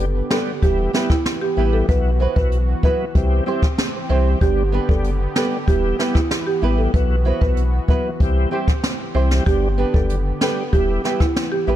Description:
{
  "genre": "dancehall",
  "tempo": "95 BPM",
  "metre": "4/4",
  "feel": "straight",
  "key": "E minor",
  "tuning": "A4 = 440 Hz",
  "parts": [
    { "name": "tonewheel organ", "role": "accompaniment", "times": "0.0-11.8 s", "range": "F#3 to G4", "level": "-26 LUFS", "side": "left 2 dB", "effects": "chorus vibrato, slow rotary speaker" },
    { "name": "warm analog pad", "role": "sustained chords", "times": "0.0-11.8 s", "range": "D3 to G4", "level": "-29 LUFS", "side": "left 1 dB", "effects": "chorus, sidechain pumping" },
    { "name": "warm sub bass", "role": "bass", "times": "0.0-11.8 s", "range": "E1 to C2", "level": "-19 LUFS", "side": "equal", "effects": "none" },
    { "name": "buzzing marimba with medium mallets", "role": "melody", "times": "0.3-11.6 s", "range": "E4 to C5", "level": "-24 LUFS", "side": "right 3 dB", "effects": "digital delay" },
    { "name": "nylon-string guitar", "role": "arpeggios", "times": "0.3-11.8 s", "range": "B3 to C5", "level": "-28 LUFS", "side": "right 6 dB", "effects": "digital delay" },
    { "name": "jazz brush drum kit", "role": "drums", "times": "0.3-11.5 s", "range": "hi-hat, kick drum, rim click, snare drum", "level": "-20 LUFS", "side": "equal", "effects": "none" }
  ],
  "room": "studio ambience",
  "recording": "dark, warm production",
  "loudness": "-16 LUFS",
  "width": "side -12 dB against mid",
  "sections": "0.0-11.8 A section",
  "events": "none",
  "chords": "0.0 G; 0.6 Em; 1.9 Bsus4; 3.1 C; 4.4 G; 5.7 Em; 6.9 Bsus4; 8.2 C; 9.5 G; 10.7 Em"
}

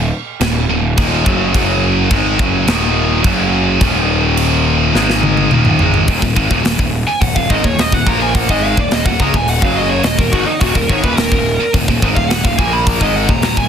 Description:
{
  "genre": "heavy metal",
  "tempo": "106 BPM",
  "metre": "4/4",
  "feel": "straight",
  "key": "Eb minor",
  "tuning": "A4 = 437 Hz",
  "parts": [
    { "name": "heavy high-gain guitar", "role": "riff", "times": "0.0-13.7 s", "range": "Eb2 to Bb3", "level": "-18 LUFS", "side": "right 2 dB", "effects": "distortion" },
    { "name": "overdriven semi-hollow guitar", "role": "riff", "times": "0.0-13.7 s", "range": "Eb2 to Bb3", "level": "-20 LUFS", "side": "left 1 dB", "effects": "none" },
    { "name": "fuzz picked electric bass", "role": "bass", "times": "0.0-13.7 s", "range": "Eb1 to Db2", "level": "-18 LUFS", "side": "equal", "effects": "overdrive" },
    { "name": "tight metal drum kit", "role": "drums", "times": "0.4-13.7 s", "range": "crash cymbal, hi-hat, kick drum, snare drum, toms", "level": "-16 LUFS", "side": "equal", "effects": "none" },
    { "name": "high-gain lead guitar", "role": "melody", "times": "7.1-13.7 s", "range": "Eb4 to Cb6", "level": "-18 LUFS", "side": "equal", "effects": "distortion" }
  ],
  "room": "light reverb",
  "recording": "dense, heavily limited modern master",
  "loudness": "-11 LUFS",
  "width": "side -8 dB against mid",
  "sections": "0.0-6.1 A section; 6.1-13.7 B section",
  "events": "half time 0.0-6.1; drum fill 4.9-6.1; lead electric guitar solo 6.1-13.7",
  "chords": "0.0 Ebm; 1.5 Gb5; 2.1 Ebm; 3.2 Gb5; 3.8 Eb5; 4.9 Ab5; 5.5 Eb5; 6.1 Ebm"
}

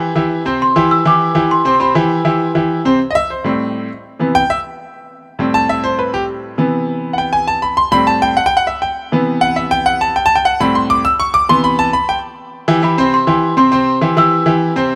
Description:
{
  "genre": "latin",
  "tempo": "201 BPM",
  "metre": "4/4",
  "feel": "straight",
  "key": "unclear",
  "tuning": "A4 = 441 Hz",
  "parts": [
    { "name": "bright concert grand piano", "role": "accompaniment", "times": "0.0-15.0 s", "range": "A2 to E6", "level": "-15 LUFS", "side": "equal", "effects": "none" },
    { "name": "worn celesta", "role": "melody", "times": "0.6-2.7, 12.8-14.7 s", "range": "B5 to E6", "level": "-17 LUFS", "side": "equal", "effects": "none" }
  ],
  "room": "moderate plate reverb, RT60 3.3 s",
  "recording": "none",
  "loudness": "-14 LUFS",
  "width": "mono",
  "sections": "0.0-3.0 A section; 3.0-12.5 B section; 12.5-15.0 C section",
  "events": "grand piano solo 3.0-12.5",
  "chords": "0.0 C; 3.0 Am7; 4.2 Cmaj7; 5.4 Am7; 6.6 Cmaj7; 7.8 Am7; 9.0 Cmaj7; 10.2 Am7; 11.3 Cmaj7; 12.5 C"
}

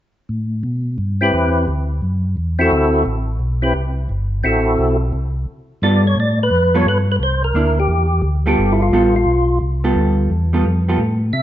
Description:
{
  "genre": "soul jazz organ trio",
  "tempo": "174 BPM",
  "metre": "4/4",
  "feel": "swing 65% on 8ths",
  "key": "G mixolydian",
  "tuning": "A4 = 441 Hz",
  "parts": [
    { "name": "mellow tonewheel organ", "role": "bass", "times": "0.3-11.4 s", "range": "G1 to C3", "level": "-18 LUFS", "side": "equal", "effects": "chorus vibrato, slow rotary speaker" },
    { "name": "percussive tonewheel organ", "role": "melody", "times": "1.2-11.4 s", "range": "C4 to E5", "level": "-18 LUFS", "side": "equal", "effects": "slow rotary speaker, chorus vibrato" },
    { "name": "vintage hollow-body jazz guitar", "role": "accompaniment", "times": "5.8-11.0 s", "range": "G3 to A4", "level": "-19 LUFS", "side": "right 1 dB", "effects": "none" }
  ],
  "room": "wet large studio reverb, RT60 1.4 s",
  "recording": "dark, warm production, nothing above 7.7 kHz",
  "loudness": "-15 LUFS",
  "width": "side -12 dB against mid",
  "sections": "0.3-5.8 A section; 5.8-11.4 B section",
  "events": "stop 5.5-5.8",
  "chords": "0.3 Am9; 1.7 D9; 3.1 Am9; 4.4 Am69; 5.8 G9; 7.2 C9; 8.6 G9"
}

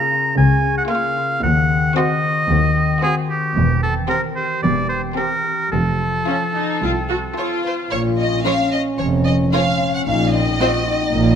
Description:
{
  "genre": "cinematic, playful, whimsical film cue",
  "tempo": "112 BPM",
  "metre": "4/4",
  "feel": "straight",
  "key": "Bb minor",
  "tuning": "A4 = 435 Hz",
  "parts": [
    { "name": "rich studio violin section", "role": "melody", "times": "0.0-11.4 s", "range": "C5 to Db6", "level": "-23 LUFS", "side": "left 1 dB", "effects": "none" },
    { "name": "clear oboe", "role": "second line", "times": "0.0-7.6 s", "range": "G4 to Bb5", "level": "-20 LUFS", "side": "right 2 dB", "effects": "none" },
    { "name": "rich studio violin section", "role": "second line", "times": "0.0-10.7 s", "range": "C4 to Db5", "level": "-25 LUFS", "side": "equal", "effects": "none" },
    { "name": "clear studio viola section", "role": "accompaniment", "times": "0.0-10.7 s", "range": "F3 to Gb4", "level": "-26 LUFS", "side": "right 1 dB", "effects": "none" },
    { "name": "concert harp", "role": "arpeggios", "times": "0.0-11.4 s", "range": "Bb2 to C5", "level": "-23 LUFS", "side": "left 7 dB", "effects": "none" },
    { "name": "dark studio cello section", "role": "bass", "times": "0.4-11.4 s", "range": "C2 to Db3", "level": "-23 LUFS", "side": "right 2 dB", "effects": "none" },
    { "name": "rich studio double bass section", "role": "bass", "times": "0.4-11.4 s", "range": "E1 to Eb2", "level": "-22 LUFS", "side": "right 3 dB", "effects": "none" },
    { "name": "mellow French horn section", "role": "sustained chords", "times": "7.9-11.4 s", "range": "Db4 to F4", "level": "-22 LUFS", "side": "left 3 dB", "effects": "none" }
  ],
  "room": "moderate scoring stage reverb, RT60 1.6 s",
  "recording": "none",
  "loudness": "-16 LUFS",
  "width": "side -8 dB against mid",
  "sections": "0.0-7.9 A section; 7.9-11.4 B section",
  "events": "none",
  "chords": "0.0 Bbm/Db; 1.4 Cdim/Eb; 3.6 C7/E; 5.7 F; 7.9 Bbm; 10.1 Cm7b5/Bb"
}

